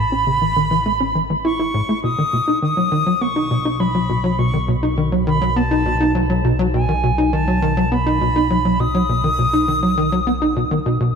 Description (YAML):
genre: ambient, sequencer-driven space music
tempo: 102 BPM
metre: 4/4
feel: straight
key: unclear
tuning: A4 = 440 Hz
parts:
  - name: silver concert flute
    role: melody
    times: 0.0-11.2 s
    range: G#5 to D#6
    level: -21 LUFS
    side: right 1 dB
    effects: tape echo
  - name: tight sequencer bass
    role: riff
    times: 0.0-11.1 s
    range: A2 to E4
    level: -18 LUFS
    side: equal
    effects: lush chorus, cassette tape, tape echo
  - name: analog drone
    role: bass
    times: 0.0-11.2 s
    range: A1 to B1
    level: -24 LUFS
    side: equal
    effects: chorus
room: moderate plate reverb, RT60 3.6 s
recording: echo-heavy mix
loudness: -16 LUFS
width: side -6 dB against mid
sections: 0.0-11.2 A section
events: filter sweep on analog synth bass 0.0-11.2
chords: 0.0 Aadd9; 2.0 B